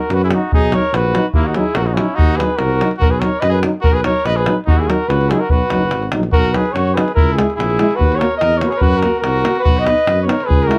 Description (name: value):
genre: balkan folk, Balkan brass band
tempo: 145 BPM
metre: 2/4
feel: straight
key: B major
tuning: A4 = 440 Hz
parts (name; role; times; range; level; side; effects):
- warm flugelhorn; melody; 0.0-10.8 s; E4 to D#5; -21 LUFS; equal; none
- bright trumpet; second line; 0.0-10.8 s; A#3 to B4; -25 LUFS; equal; none
- mellow tuba; bass; 0.1-10.7 s; F#1 to F#2; -22 LUFS; equal; none
- davul; percussion; 0.1-10.8 s; none; -20 LUFS; equal; none
- warm French horn; accompaniment; 0.3-10.8 s; D#4 to F#4; -26 LUFS; equal; none
- warm euphonium; accompaniment; 0.3-10.8 s; F#3 to B3; -24 LUFS; equal; none
room: moderate small room reverb, RT60 0.5 s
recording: none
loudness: -15 LUFS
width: mono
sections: 0.0-6.3 A section; 6.3-10.8 B section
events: none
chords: 0.0 B; 1.4 D#m; 3.0 B; 4.7 D#m; 5.5 B; 7.2 C#m; 8.0 D#m; 8.8 F#; 9.7 B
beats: 0.12 | 0.54 0.95 | 1.36 1.78 | 2.19 2.60 | 3.02 3.43 | 3.85 4.26 | 4.67 5.09 | 5.50 5.92 | 6.33 6.75 | 7.16 7.58 | 7.99 8.41 | 8.82 9.24 | 9.65 10.06 | 10.48